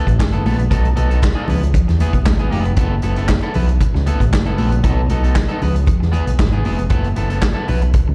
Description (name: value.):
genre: disco.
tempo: 116 BPM.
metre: 4/4.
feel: straight.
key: F# dorian.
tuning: A4 = 442 Hz.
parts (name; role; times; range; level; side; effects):
electric guitar at the edge of break-up; accompaniment; 0.0-8.1 s; B3 to B4; -27 LUFS; equal; slapback echo.
overdriven fingered electric bass; bass; 0.1-8.1 s; E#1 to E2; -19 LUFS; equal; none.
vintage drum kit; drums; 0.1-8.1 s; handclaps, hi-hat, kick drum, snare drum; -21 LUFS; equal; none.
congas; percussion; 0.2-7.8 s; none; -28 LUFS; equal; slapback echo.
room: studio reverb.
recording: live gig heard through the venue's PA, recital hall reverb.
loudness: -17 LUFS.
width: mono.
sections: 0.0-8.1 A section.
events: none.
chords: 0.0 F#m7; 0.7 B7; 1.5 C#m7; 2.8 F#m7; 4.8 B7; 5.6 C#m7; 6.9 F#m7.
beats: 0.19 | 0.70 1.22 1.74 2.25 | 2.77 3.29 3.81 4.32 | 4.84 5.36 5.88 6.39 | 6.91 7.43 7.94.